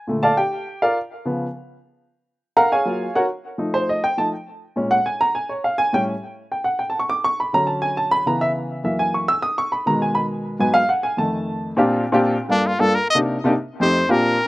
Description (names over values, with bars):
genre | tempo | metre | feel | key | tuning
jazz | 206 BPM | 4/4 | straight | unclear | A4 = 440 Hz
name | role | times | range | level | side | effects
warm baby grand piano | accompaniment | 0.0-14.4 s | F2 to E6 | -18 LUFS | equal | none
brilliant trumpet | melody | 12.5-14.5 s | D4 to Eb5 | -19 LUFS | left 1 dB | none
room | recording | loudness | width
little or no reverb | recorded outdoors, with no room sound | -18 LUFS | side -18 dB against mid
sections
0.0-2.4 A section; 2.4-11.8 A section; 11.8-14.5 A section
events
grand piano solo 0.0-11.8; trumpet solo 11.8-14.5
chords
0.1 Bbmaj7; 1.3 Db7; 2.4 F#maj9; 3.6 F7; 4.8 A#m7; 5.9 A7; 7.1 Dmaj7; 8.3 C#m7; 8.9 F#7; 9.4 B6; 10.6 G#m7; 11.2 F7; 11.8 Bb69; 12.4 Gm7; 12.9 Cm7; 13.5 F7